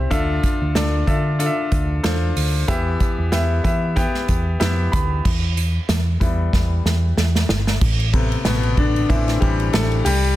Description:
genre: piano-driven pop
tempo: 94 BPM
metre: 4/4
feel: swing 56% on 16ths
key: A minor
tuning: A4 = 443 Hz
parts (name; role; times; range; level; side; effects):
- bright concert grand piano; accompaniment; 0.0-10.4 s; B2 to B5; -23 LUFS; left 2 dB; none
- hollow-body short-scale picked electric bass; bass; 0.0-10.4 s; G1 to E3; -20 LUFS; equal; none
- unplugged drum kit; drums; 0.1-10.4 s; crash cymbal, hi-hat, kick drum, ride cymbal, snare drum; -21 LUFS; equal; soft clipping on snare
room: small room reverb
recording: dense, heavily limited modern master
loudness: -17 LUFS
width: side -15 dB against mid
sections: 0.0-5.2 A section; 5.2-7.8 B section; 7.8-10.4 C section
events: grand piano fill 4.3-5.2; grand piano solo 5.2-7.8, 7.8-10.4; drum fill 6.5-7.8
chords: 0.1 Dmadd9; 2.7 Em; 7.8 Amadd9

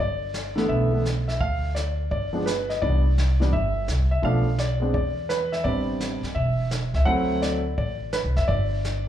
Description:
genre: jazz piano trio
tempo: 169 BPM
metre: 4/4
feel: swing 65% on 8ths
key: G major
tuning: A4 = 440 Hz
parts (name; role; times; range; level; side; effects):
- warm grand piano; melody; 0.0-9.1 s; D3 to F#5; -25 LUFS; equal; slapback echo
- upright bass; bass; 0.0-9.1 s; E1 to E2; -24 LUFS; equal; none
- vintage brush drum kit; drums; 0.3-9.1 s; brushed snare drum, hi-hat, kick drum, snare drum; -33 LUFS; right 1 dB; none
room: small room ambience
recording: live gig heard through the venue's PA, club reverb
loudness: -22 LUFS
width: side -11 dB against mid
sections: 0.0-9.1 A section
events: none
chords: 0.0 G69; 1.4 Dm; 2.1 G; 2.8 Cmaj9; 4.2 Bm7b5; 4.9 Bmadd11/E; 5.6 Am11; 7.1 D7; 8.5 G5

